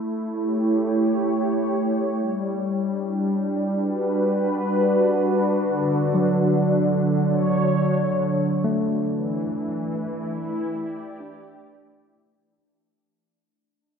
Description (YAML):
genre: ambient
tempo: 69 BPM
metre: 4/4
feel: straight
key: unclear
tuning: A4 = 440 Hz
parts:
  - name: warm analog pad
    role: sustained chords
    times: 0.0-12.6 s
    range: D3 to D5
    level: -21 LUFS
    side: equal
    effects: wide subtle chorus
  - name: barky tine electric piano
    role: arpeggios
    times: 6.1-12.6 s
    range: F#3 to D4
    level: -24 LUFS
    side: right 1 dB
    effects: overdrive, auto-pan, diffuse ambient delay
room: wet lush hall reverb, RT60 2.8 s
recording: none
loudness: -20 LUFS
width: side -6 dB against mid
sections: 0.0-12.6 A section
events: filter sweep on analog synth pad 0.0-12.6; fade-out 7.9-12.6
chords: 0.0 A7; 2.2 Gmaj7; 5.6 Dmaj7; 9.1 Em7